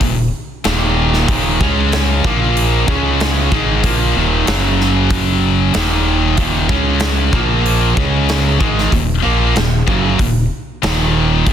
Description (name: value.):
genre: hard rock.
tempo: 94 BPM.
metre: 4/4.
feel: straight.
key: Eb minor.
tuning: A4 = 442 Hz.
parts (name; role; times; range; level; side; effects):
biting overdriven guitar; riff; 0.0-11.5 s; Eb2 to Db4; -18 LUFS; right 9 dB; none.
scooped high-gain guitar; riff; 0.0-11.5 s; Eb2 to Db4; -18 LUFS; left 12 dB; distortion.
growling fingered electric bass; bass; 0.0-11.5 s; Eb1 to Db2; -18 LUFS; equal; overdrive.
huge arena drum kit; drums; 0.0-11.5 s; hi-hat, kick drum, snare drum; -19 LUFS; equal; none.
room: little or no reverb.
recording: dense, heavily limited modern master.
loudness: -12 LUFS.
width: side -9 dB against mid.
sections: 0.0-11.5 A section.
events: none.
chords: 0.0 Eb5; 1.6 Db5; 2.2 Bb5; 2.9 Db5; 3.5 Eb5; 4.5 Gb5; 5.7 Eb5; 6.7 Db5; 7.3 Bb5; 8.0 Db5; 8.6 Ebm.